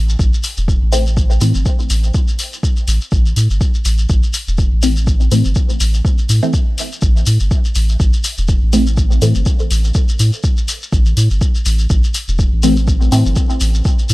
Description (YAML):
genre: dub techno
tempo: 123 BPM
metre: 4/4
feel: swing 56% on 16ths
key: A minor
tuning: A4 = 440 Hz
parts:
  - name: soft dub sub bass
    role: bass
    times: 0.0-14.1 s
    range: E1 to A2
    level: -14 LUFS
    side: equal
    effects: transformer saturation, sidechain pumping
  - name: shekere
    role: percussion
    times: 0.1-14.1 s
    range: none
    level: -25 LUFS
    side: left 2 dB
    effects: none
  - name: electronic kick drum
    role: drums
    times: 0.2-14.0 s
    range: none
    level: -14 LUFS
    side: equal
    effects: overdrive
  - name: electronic hi-hat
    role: drums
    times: 0.4-14.1 s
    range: none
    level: -26 LUFS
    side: left 3 dB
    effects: overdrive
  - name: filtered dub chord stab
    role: stabs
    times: 0.9-14.1 s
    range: E3 to C4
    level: -19 LUFS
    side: left 1 dB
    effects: phaser, cassette tape, sidechain pumping, dub echo
room: digital ambience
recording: dry, gritty hardware recording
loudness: -12 LUFS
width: side -19 dB against mid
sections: 0.0-14.1 A section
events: none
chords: 0.0 Am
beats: 0.19 0.68 | 1.17 1.66 2.15 2.63 | 3.12 3.61 4.10 4.58 | 5.07 5.56 6.05 6.54 | 7.02 7.51 8.00 8.49 | 8.97 9.46 9.95 10.44 | 10.93 11.41 11.90 12.39 | 12.88 13.36 13.85